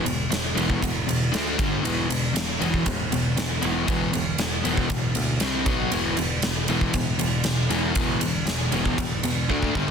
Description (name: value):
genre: hard rock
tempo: 118 BPM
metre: 4/4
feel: straight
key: E minor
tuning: A4 = 441 Hz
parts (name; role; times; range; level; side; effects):
- overdriven semi-hollow guitar; riff; 0.0-9.9 s; E2 to D4; -27 LUFS; left 8 dB; spring reverb
- overdriven semi-hollow guitar; riff; 0.0-9.9 s; E2 to D4; -29 LUFS; right 11 dB; tremolo
- picked electric bass; bass; 0.0-9.9 s; E1 to D2; -30 LUFS; right 1 dB; none
- huge arena drum kit; drums; 0.1-9.9 s; kick drum, ride cymbal, snare drum, toms; -25 LUFS; right 1 dB; soft clipping on kick
room: light reverb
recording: dense, heavily limited modern master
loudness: -21 LUFS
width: side -6 dB against mid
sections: 0.0-9.9 A section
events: drum fill 9.5-9.9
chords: 0.0 E5; 1.3 D5; 1.6 G5; 1.8 E5; 5.4 C5; 5.7 B5; 5.9 E5; 9.5 D5